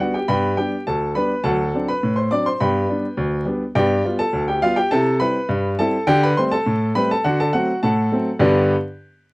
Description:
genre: ragtime piano.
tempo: 103 BPM.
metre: 2/4.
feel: straight.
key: G major.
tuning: A4 = 440 Hz.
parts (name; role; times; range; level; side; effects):
warm baby grand piano; solo; 0.0-8.7 s; D2 to D6; -17 LUFS; equal; none.
room: light reverb.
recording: dry, close 1970s-style studio recording, vinyl crackle.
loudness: -17 LUFS.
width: side -24 dB against mid.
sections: 0.0-8.4 A section.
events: none.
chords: 0.0 G; 1.4 D7; 2.6 G; 3.8 G7; 4.9 C; 6.1 D7sus4; 7.2 D7; 8.4 G.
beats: | 0.28 0.86 | 1.44 2.02 | 2.60 3.18 | 3.76 4.34 | 4.92 5.50 | 6.08 6.66 | 7.24 7.83 | 8.41.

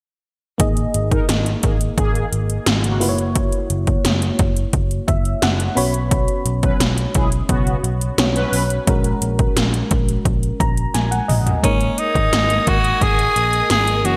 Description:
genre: 1980s-style pop.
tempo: 87 BPM.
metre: 4/4.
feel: straight.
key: G# minor.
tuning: A4 = 441 Hz.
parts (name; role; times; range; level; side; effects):
FM electric piano with tremolo; accompaniment; 0.6-14.2 s; E3 to B5; -26 LUFS; equal; none.
vintage muted picked electric bass; bass; 0.6-14.2 s; F#1 to B1; -24 LUFS; equal; none.
80s electronic pad drums; drums; 0.6-14.2 s; hi-hat, kick drum, snare drum, toms; -22 LUFS; equal; gated reverb on snare and toms, overdrive, gated reverb.
mellow synth brass; stabs; 1.1-8.6 s; C#3 to B4; -28 LUFS; equal; chorus, phaser, digital delay.
raspy tenor saxophone; melody; 11.6-14.2 s; C#4 to G#4; -20 LUFS; equal; digital delay.
phased string machine; sustained chords; 11.6-14.2 s; A#4 to D#6; -30 LUFS; equal; ensemble chorus, phaser.
room: moderate lush hall reverb, RT60 2.0 s.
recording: bright 1980s-style digital production.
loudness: -18 LUFS.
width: mono.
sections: 0.6-11.6 A section; 11.6-14.2 B section.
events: FM electric piano fill 4.7-6.1, 10.3-11.6; drum fill 10.9-11.6.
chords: 0.6 G#sus2; 3.0 F#7; 5.8 Bsus2; 8.9 F#add9/A#; 11.6 G#sus2.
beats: | 0.60 1.29 1.98 2.67 | 3.35 4.04 4.74 5.42 | 6.11 6.80 7.49 8.18 | 8.87 9.56 10.25 10.94 | 11.63 12.32 13.01 13.70.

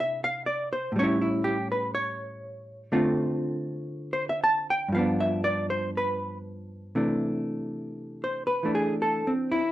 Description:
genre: jazz ballad.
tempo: 60 BPM.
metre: 4/4.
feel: swing 67% on 8ths.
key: C major.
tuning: A4 = 440 Hz.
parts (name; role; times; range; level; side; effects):
hollow-body jazz guitar; solo; 0.0-9.7 s; G2 to A5; -25 LUFS; equal; none.
room: light reverb.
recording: dry, close 1970s-style studio recording, lossy compression artefacts.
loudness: -25 LUFS.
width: side -14 dB against mid.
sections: 0.0-7.0 A section; 7.0-9.7 A section.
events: none.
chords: 0.0 C69; 0.9 A7; 2.9 Dm7; 4.9 G7; 7.0 C69.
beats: 0.94 1.93 | 2.92 3.92 4.92 5.93 | 6.95 7.96 8.97.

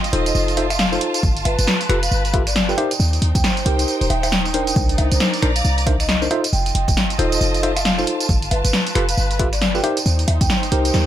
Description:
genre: UK garage, two-step garage.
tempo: 136 BPM.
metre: 4/4.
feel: swing 60% on 16ths.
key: unclear.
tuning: A4 = 441 Hz.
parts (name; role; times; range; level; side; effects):
punchy analog drum machine; drums; 0.0-11.0 s; bongos, finger snaps, hi-hat, snare drum, tambourine; -21 LUFS; equal; none.
warm studio string section; texture; 0.0-11.1 s; Eb4 to Bb5; -27 LUFS; equal; sidechain pumping.
mellow tine electric piano; stabs; 0.1-11.1 s; D4 to C5; -23 LUFS; equal; medium stereo tremolo.
short 808-style bass; bass; 0.1-11.1 s; Eb1 to Eb2; -20 LUFS; equal; tube saturation.
marimba with soft mallets; melody; 0.3-10.9 s; B4 to G5; -27 LUFS; right 2 dB; none.
electronic kick drum; drums; 1.2-10.5 s; none; -22 LUFS; equal; none.
room: light reverb.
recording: none.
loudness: -16 LUFS.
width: side -11 dB against mid.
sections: 0.0-11.1 A section.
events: none.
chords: 0.0 F7; 1.2 G9; 2.8 Eb6; 4.8 Cm9; 6.3 F7; 8.3 G9; 9.8 Eb6.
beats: 0.35 0.79 | 1.23 1.68 2.12 2.56 | 3.00 3.44 3.88 4.32 | 4.76 5.20 5.64 6.09 | 6.53 6.97 7.41 7.85 | 8.29 8.73 9.18 9.62 | 10.06 10.50 10.94.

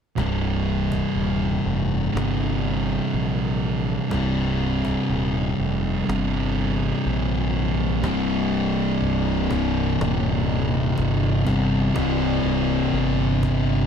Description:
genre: stoner and doom metal.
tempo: 61 BPM.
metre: 4/4.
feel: straight.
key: unclear.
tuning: A4 = 440 Hz.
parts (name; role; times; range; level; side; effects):
thick fuzz guitar; riff; 0.2-13.9 s; C2 to C3; -25 LUFS; left 11 dB; distortion.
thick fuzz guitar; riff; 0.2-13.9 s; C2 to C3; -25 LUFS; right 10 dB; distortion.
fuzz fingered electric bass; bass; 0.2-13.9 s; C1 to Bb1; -26 LUFS; equal; overdrive.
cajon; drums; 0.2-13.7 s; none; -31 LUFS; equal; none.
thick fuzz guitar; riff; 8.0-13.9 s; C2 to C3; -26 LUFS; left 1 dB; distortion.
room: light reverb, digital ambience.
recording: dark, warm production.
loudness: -20 LUFS.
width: side -7 dB against mid.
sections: 0.2-8.0 A section; 8.0-13.9 B section.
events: kick and snare drop out 7.5-8.0.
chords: 0.2 C5; 8.0 Cm.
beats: | 0.17 1.16 2.14 3.12 | 4.11 5.09 6.08 7.06 | 8.04 9.02 10.00 10.98 | 11.96 12.94.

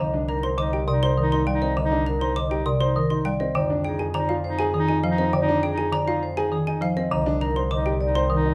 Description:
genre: classical, minimalist pattern music.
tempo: 101 BPM.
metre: 3/4.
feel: straight.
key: C minor.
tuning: A4 = 442 Hz.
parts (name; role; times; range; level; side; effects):
vibraphone with medium hard mallets; melody; 0.0-8.5 s; Ab4 to Eb5; -31 LUFS; equal; none.
bright clarinet; second line; 0.0-8.5 s; Eb4; -32 LUFS; equal; none.
folk marimba with medium hard mallets; accompaniment; 0.0-8.5 s; C3 to G3; -28 LUFS; equal; none.
dark baby grand piano; arpeggios; 0.0-8.5 s; C4 to C5; -32 LUFS; equal; none.
xylophone with rubber mallets; arpeggios; 0.0-8.3 s; Eb5 to Eb6; -33 LUFS; equal; none.
clear double bass; bass; 0.0-8.5 s; C2 to F2; -31 LUFS; equal; none.
room: moderate large studio reverb, RT60 1.0 s.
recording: none.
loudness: -23 LUFS.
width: mono.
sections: 0.0-8.5 A section.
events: none.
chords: 0.0 Cm7; 3.5 Fm9; 7.1 Cm7.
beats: 0.58 1.17 | 1.77 2.36 2.96 | 3.55 4.14 4.74 | 5.33 5.93 6.52 | 7.11 7.71 8.30.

